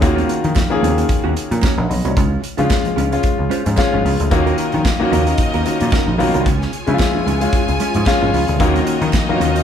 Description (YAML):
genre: disco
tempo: 112 BPM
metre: 4/4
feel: swing 56% on 16ths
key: Eb minor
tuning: A4 = 440 Hz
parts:
  - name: semi-hollow electric guitar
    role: accompaniment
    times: 0.0-9.6 s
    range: Ab3 to Bb4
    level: -24 LUFS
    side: right 5 dB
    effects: none
  - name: warm grand piano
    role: accompaniment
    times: 0.0-9.6 s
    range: Eb3 to Gb5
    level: -18 LUFS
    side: left 3 dB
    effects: none
  - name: overdriven picked electric bass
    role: bass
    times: 0.0-9.6 s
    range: Ab1 to Eb3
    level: -20 LUFS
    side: equal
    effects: none
  - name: modern studio drum kit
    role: drums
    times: 0.0-9.6 s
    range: hi-hat, kick drum, snare drum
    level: -20 LUFS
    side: equal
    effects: none
  - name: congas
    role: percussion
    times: 0.4-9.5 s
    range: none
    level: -26 LUFS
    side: left 2 dB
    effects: none
  - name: group handclap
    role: percussion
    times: 0.6-9.3 s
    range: none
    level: -33 LUFS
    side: right 5 dB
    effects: none
  - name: clear studio string section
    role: sustained chords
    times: 4.3-9.6 s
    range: Eb4 to Ab5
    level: -26 LUFS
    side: equal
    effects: none
room: light reverb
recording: band playing live in one room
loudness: -14 LUFS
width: side -8 dB against mid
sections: 0.0-9.6 A section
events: grand piano fill 3.2-4.3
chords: 0.0 Ebm7; 2.2 Db; 4.3 Ebm7; 6.5 Db; 8.6 Ebm7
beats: | 0.03 0.56 1.10 1.63 | 2.17 2.71 3.24 3.78 | 4.31 4.85 5.38 5.92 | 6.46 6.99 7.53 8.06 | 8.60 9.13